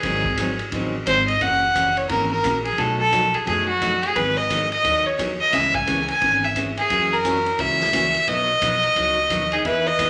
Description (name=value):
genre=country, western swing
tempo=175 BPM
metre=4/4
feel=swing 62% on 8ths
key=unclear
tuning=A4 = 438 Hz
part: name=clear fiddle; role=melody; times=0.0-10.1 s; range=F#4 to G#5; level=-21 LUFS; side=equal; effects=none
part: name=picked steel-string acoustic guitar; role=accompaniment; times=0.0-10.1 s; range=B2 to G#4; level=-31 LUFS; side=equal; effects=none
part: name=upright bass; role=bass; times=0.0-10.1 s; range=F#1 to F#2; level=-33 LUFS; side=equal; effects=none
part: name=vintage drum kit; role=drums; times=0.0-10.1 s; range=hi-hat, kick drum, ride cymbal, snare drum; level=-32 LUFS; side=equal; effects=none
part: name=breathy alto saxophone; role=second line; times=9.5-10.1 s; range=D#4 to B4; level=-27 LUFS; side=equal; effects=none
room=wet large studio reverb, RT60 0.7 s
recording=none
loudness=-20 LUFS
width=mono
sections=0.0-10.1 A section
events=none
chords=0.0 G#7; 1.4 F#7; 2.8 B7; 4.2 G#m7; 5.5 C#m7; 6.9 F#7; 8.3 B